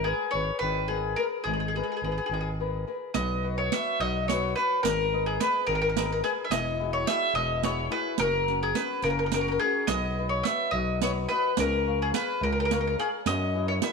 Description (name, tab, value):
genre	italian folk, Italian serenade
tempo	71 BPM (dotted quarters)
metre	6/8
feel	straight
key	G# minor, B major from 3.1 s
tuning	A4 = 445 Hz
part	bowl-back mandolin	melody	0.0-13.9 s	G#4 to E5	-27 LUFS	left 1 dB	none
part	flamenco guitar	accompaniment	0.0-13.9 s	B2 to E#5	-34 LUFS	left 9 dB	none
part	growling FM bass	bass	0.0-13.8 s	E1 to F#2	-31 LUFS	right 2 dB	none
part	riq	percussion	3.1-13.9 s	none	-32 LUFS	right 13 dB	none
room	moderate echo chamber reverb, RT60 1.6 s, studio reverb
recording	1960s-style stereo with parts hard left and right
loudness	-25 LUFS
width	side -4 dB against mid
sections	0.0-3.1 A section; 3.1-13.9 B section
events	none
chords	0.0 G#madd9; 3.1 Bsus2; 4.8 G#m; 6.5 Eadd9; 8.2 F#; 9.9 B; 11.6 C#; 13.3 F#7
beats	0.60 | 1.45 2.29 | 3.15 3.99 | 4.84 5.68 | 6.52 7.35 | 8.19 9.03 | 9.88 10.73 | 11.58 12.42 | 13.26